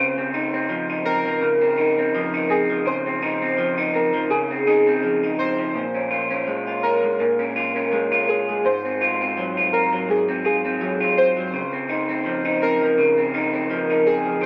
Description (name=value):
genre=indie pop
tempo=83 BPM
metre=4/4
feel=swing 55% on 16ths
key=Db major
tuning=A4 = 441 Hz
part: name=warbly lo-fi synth keys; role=melody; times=0.0-14.5 s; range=Ab4 to C5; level=-24 LUFS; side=equal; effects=phaser, subtle chorus, tape echo
part: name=electric guitar through a small old amp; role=accompaniment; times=0.0-14.5 s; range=Ab2 to F4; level=-24 LUFS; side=equal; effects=subtle chorus, warbly pitch drift
room=moderate spring reverb, RT60 1.7 s, digital ambience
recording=none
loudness=-21 LUFS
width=mono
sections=0.0-14.5 A section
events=none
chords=0.0 Dbmaj9; 5.8 Bbm7; 8.6 Ab6; 11.5 Dbmaj9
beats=0.69 1.41 2.14 | 2.86 3.58 4.31 5.03 | 5.75 6.48 7.20 7.92 | 8.65 9.37 10.09 10.81 | 11.54 12.26 12.98 13.70 | 14.43